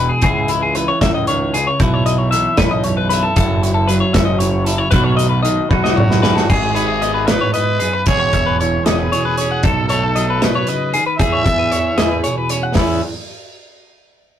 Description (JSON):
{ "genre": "math rock and midwest emo", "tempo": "77 BPM (dotted quarters)", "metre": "6/8", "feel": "straight", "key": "E major", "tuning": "A4 = 444 Hz", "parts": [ { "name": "clean electric guitar", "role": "accompaniment", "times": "0.0-13.0 s", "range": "E2 to G#4", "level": "-20 LUFS", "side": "right 2 dB", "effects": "none" }, { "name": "twelve-string electric guitar", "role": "arpeggios", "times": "0.0-13.0 s", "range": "E4 to F#5", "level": "-19 LUFS", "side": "left 4 dB", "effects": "none" }, { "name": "fuzz fingered electric bass", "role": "bass", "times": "0.0-13.0 s", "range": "E1 to E2", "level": "-22 LUFS", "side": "equal", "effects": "overdrive" }, { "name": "loose indie drum kit", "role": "drums", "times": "0.2-12.9 s", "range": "crash cymbal, hi-hat, kick drum, snare drum, toms", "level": "-18 LUFS", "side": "equal", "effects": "none" }, { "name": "growling trumpet", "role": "melody", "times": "5.7-12.2 s", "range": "F#4 to E5", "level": "-20 LUFS", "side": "equal", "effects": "none" } ], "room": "moderate booth ambience, RT60 0.3 s", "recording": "rough rehearsal-room recording, tube saturation", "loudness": "-13 LUFS", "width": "side -10 dB against mid", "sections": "0.0-6.5 A section; 6.5-12.8 B section; 12.8-14.3 C section", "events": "drum fill 5.7-6.5", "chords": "0.2 C#m; 1.8 Bsus4; 3.4 F#m7; 4.9 B7; 6.5 G#m7; 8.1 E6; 9.6 B9; 11.2 E6" }